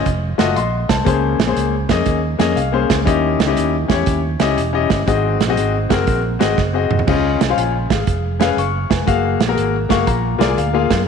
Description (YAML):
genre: uptempo gospel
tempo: 120 BPM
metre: 4/4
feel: swing 66% on 8ths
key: unclear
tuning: A4 = 440 Hz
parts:
  - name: warm grand piano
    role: accompaniment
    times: 0.0-11.0 s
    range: Ab2 to Db6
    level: -18 LUFS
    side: left 8 dB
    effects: none
  - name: fingered electric bass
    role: bass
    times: 0.0-11.1 s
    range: Fb1 to Gb2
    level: -21 LUFS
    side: right 2 dB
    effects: none
  - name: natural country drum kit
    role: drums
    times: 0.1-11.0 s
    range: crash cymbal, hi-hat, kick drum, snare drum, toms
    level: -20 LUFS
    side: right 6 dB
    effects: none
room: moderate echo chamber reverb, RT60 1.7 s, small room ambience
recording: 1960s-style stereo with parts hard left and right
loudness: -14 LUFS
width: side -6 dB against mid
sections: 0.0-11.1 A section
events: grand piano fill 2.1-3.1, 9.6-11.1; drum fill 6.6-7.1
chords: 0.1 F7b9; 1.1 Bbm9; 3.1 Eb7b9; 5.1 Ab7; 7.1 Dbmaj9; 8.1 Db7/F; 9.1 Gbmaj9; 10.1 Bb7